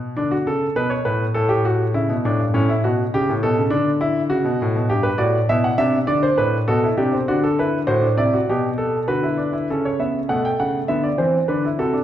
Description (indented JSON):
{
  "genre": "classical, baroque-style 3-part fugue for grand piano",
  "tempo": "101 BPM",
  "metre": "4/4",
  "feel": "straight",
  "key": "unclear",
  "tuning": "A4 = 440 Hz",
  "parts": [
    { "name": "clear grand piano", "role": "solo", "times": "0.0-12.0 s", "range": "G2 to G5", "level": "-17 LUFS", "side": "equal", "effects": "none" }
  ],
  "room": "wet recital hall reverb, RT60 1.5 s",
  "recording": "heard from further back in the room",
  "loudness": "-17 LUFS",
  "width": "side -11 dB against mid",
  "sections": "0.0-9.7 A section; 9.7-12.0 B section",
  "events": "none",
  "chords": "0.2 D; 1.4 A; 2.5 A7; 3.7 D; 4.9 G; 6.1 D; 7.3 D7; 8.5 G/B; 9.7 A/C#; 10.9 D"
}